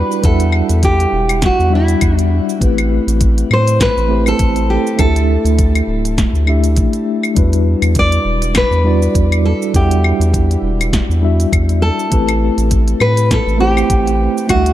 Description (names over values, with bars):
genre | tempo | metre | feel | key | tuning
sunset chillout | 101 BPM | 4/4 | swing 56% on 16ths | unclear | A4 = 440 Hz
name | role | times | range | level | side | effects
nylon-string guitar | melody | 0.0-14.7 s | E4 to D5 | -18 LUFS | left 1 dB | ping-pong delay, shimmer reverb
mellow tine electric piano | accompaniment | 0.0-14.7 s | G3 to F#5 | -18 LUFS | moving between left 6 dB and right 6 dB | medium stereo tremolo, auto-pan, ping-pong delay, shimmer reverb
round analog bass | bass | 0.0-14.7 s | D1 to A2 | -14 LUFS | equal | none
deep house drum kit | drums | 0.1-14.7 s | claves, hi-hat, shaker, snare drum | -21 LUFS | left 1 dB | none
electronic kick drum | drums | 0.2-14.6 s | none | -16 LUFS | equal | none
room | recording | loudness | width
light reverb | dark, warm production | -11 LUFS | side -13 dB against mid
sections
0.0-14.7 A section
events
none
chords
0.0 Em9; 2.6 Am9; 5.0 Dsus24; 7.4 Em9; 12.1 Am9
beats
| 0.24 0.83 1.43 2.02 | 2.61 3.21 3.80 4.40 | 4.99 5.58 6.18 6.77 | 7.37 7.96 8.55 9.15 | 9.74 10.34 10.93 11.52 | 12.12 12.71 13.31 13.90 | 14.49